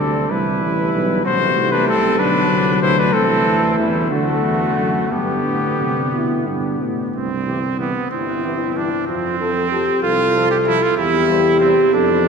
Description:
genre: classical, brass quintet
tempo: 62 BPM (dotted quarters)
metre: 6/8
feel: rubato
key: G major, C major from 7.2 s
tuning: A4 = 439 Hz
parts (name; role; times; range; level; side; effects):
- mellow trumpet; melody; 0.0-11.7 s; E4 to C5; -22 LUFS; left 4 dB; none
- clear trumpet; second line; 0.0-12.3 s; G3 to G4; -21 LUFS; right 5 dB; none
- dark French horn; accompaniment; 0.0-12.3 s; F#3 to A4; -20 LUFS; left 2 dB; none
- warm trombone; accompaniment; 0.0-11.7 s; C3 to G3; -25 LUFS; right 2 dB; none
- warm tuba; bass; 0.0-12.3 s; G1 to C3; -23 LUFS; right 2 dB; none
room: wet cathedral reverb, RT60 6.5 s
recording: recorded in a church or concert hall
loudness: -15 LUFS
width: side -5 dB against mid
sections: 0.0-7.2 A section; 7.2-12.3 B section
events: none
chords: 0.3 Cmaj7; 1.2 F#dim/A; 2.2 Bm; 3.1 Am/C; 4.1 D; 5.1 G; 7.2 C; 9.1 F; 11.0 C/E

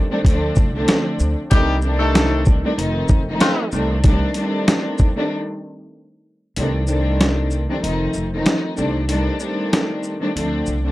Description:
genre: hip hop, boom-bap hip-hop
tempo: 95 BPM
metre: 4/4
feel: swing 55% on 16ths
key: C dorian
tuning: A4 = 445 Hz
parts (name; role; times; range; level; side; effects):
- dark symphonic string section; accompaniment; 0.0-10.9 s; D3 to Eb4; -21 LUFS; equal; high-pass filter, low-pass filter
- upright bass; bass; 0.2-10.9 s; F1 to D2; -22 LUFS; equal; tube saturation
- dusty soul sampler-style drum kit; drums; 0.2-10.8 s; hi-hat, kick drum, rim click, shaker, snare drum; -16 LUFS; equal; none
- clear horn section; stabs; 1.5-3.7 s; G3 to A4; -22 LUFS; left 2 dB; high-pass filter, low-pass filter, analog delay
room: little or no reverb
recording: dry, gritty hardware recording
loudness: -16 LUFS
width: side -17 dB against mid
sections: 0.0-6.6 A section; 6.6-10.9 B section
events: break 5.3-6.6; kick muted 6.6-10.9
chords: 0.3 Dm7; 1.5 Cm69; 2.8 F7; 3.7 Cm69; 5.3 N.C.; 6.6 Cm69; 7.8 F7; 8.8 Cm69; 10.4 Dm7

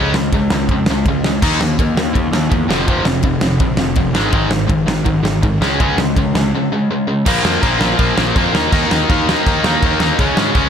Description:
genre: punk rock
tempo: 164 BPM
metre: 4/4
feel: straight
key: unclear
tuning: A4 = 440 Hz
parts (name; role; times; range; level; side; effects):
- distorted electric guitar; riff; 0.0-10.7 s; F2 to Eb4; -16 LUFS; left 1 dB; distortion
- fuzz picked electric bass; bass; 0.0-10.7 s; F1 to Ab2; -21 LUFS; equal; overdrive
- big rock drum kit; drums; 0.1-10.6 s; crash cymbal, kick drum, ride cymbal, snare drum; -17 LUFS; equal; none
room: light reverb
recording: none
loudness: -13 LUFS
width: side -8 dB against mid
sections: 0.0-7.3 A section; 7.3-10.7 B section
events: break 6.5-7.3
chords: 0.0 Db; 1.4 Eb5; 2.7 F5; 4.2 Ab5; 5.6 Db5; 7.3 Bb5; 8.5 Eb5; 10.2 Db5

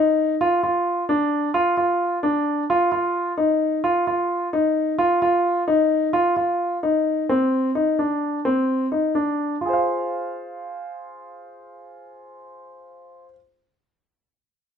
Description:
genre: progressive instrumental, progressive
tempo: 260 BPM (eighths)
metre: 5/8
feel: straight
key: F dorian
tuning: A4 = 440 Hz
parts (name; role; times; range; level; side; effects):
- warm grand piano; solo; 0.0-13.4 s; C4 to F5; -20 LUFS; equal; none
room: moderate studio reverb, RT60 0.6 s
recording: minimal, uncompressed stereo recording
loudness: -19 LUFS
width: side -7 dB against mid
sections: 0.0-7.3 A section; 7.3-9.6 B section; 9.6-11.9 C section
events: none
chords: 0.4 Dm; 2.7 Ebsus2; 7.3 Cmadd9; 9.6 Fm

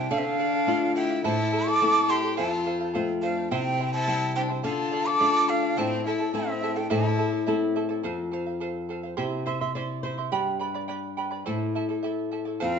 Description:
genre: andean folk, Andean ensemble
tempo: 106 BPM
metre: 2/4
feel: straight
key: A minor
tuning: A4 = 435 Hz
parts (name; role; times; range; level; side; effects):
- breathy quena; melody; 0.0-7.4, 12.6-12.8 s; E5 to D6; -26 LUFS; right 2 dB; none
- warm violin; second line; 0.0-7.4, 12.6-12.8 s; C4 to A4; -31 LUFS; left 4 dB; none
- charango; accompaniment; 0.0-12.8 s; E4 to C6; -31 LUFS; right 6 dB; none
- flamenco guitar; accompaniment; 0.0-12.8 s; F2 to E5; -28 LUFS; left 4 dB; none
room: wet large studio reverb, RT60 1.1 s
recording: band playing live in one room, nothing above 7.8 kHz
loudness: -24 LUFS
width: side -6 dB against mid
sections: 0.0-8.0 A section; 8.0-12.6 B section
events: nylon-string guitar fill 9.2-10.3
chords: 0.1 Dm; 1.2 Am; 2.4 F; 3.5 C; 4.6 Dm; 5.8 Am; 8.0 F; 9.2 C; 10.3 G; 11.5 Am

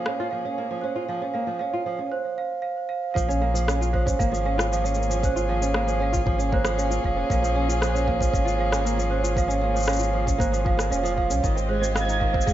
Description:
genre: folktronica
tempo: 116 BPM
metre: 4/4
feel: straight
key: unclear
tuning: A4 = 442 Hz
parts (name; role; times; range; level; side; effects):
- large celesta; second line; 0.0-12.5 s; C5 to F5; -27 LUFS; right 5 dB; digital delay, plate reverb
- muted string quartet; sustained chords; 0.0-12.5 s; Bb2 to Eb5; -31 LUFS; left 3 dB; plate reverb
- flamenco guitar; arpeggios; 0.0-12.5 s; Eb3 to F4; -29 LUFS; right 2 dB; digital delay, plate reverb
- electronic rim click and cabasa; drums; 0.1-12.5 s; none; -31 LUFS; left 2 dB; overdrive, studio reverb
- warm sub bass; bass; 3.2-12.5 s; F1 to C2; -26 LUFS; left 1 dB; none
- electronic kick drum; drums; 3.2-12.5 s; none; -26 LUFS; left 1 dB; overdrive, studio reverb
- flickering grainy texture; texture; 11.8-12.5 s; Ab6; -33 LUFS; right 5 dB; built-in reverb, plate reverb
room: light reverb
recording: nothing above 7.7 kHz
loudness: -22 LUFS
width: side -12 dB against mid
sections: 0.0-3.2 A section; 3.2-12.5 B section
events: none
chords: 0.0 Bbm7; 11.4 Fm7/Ab

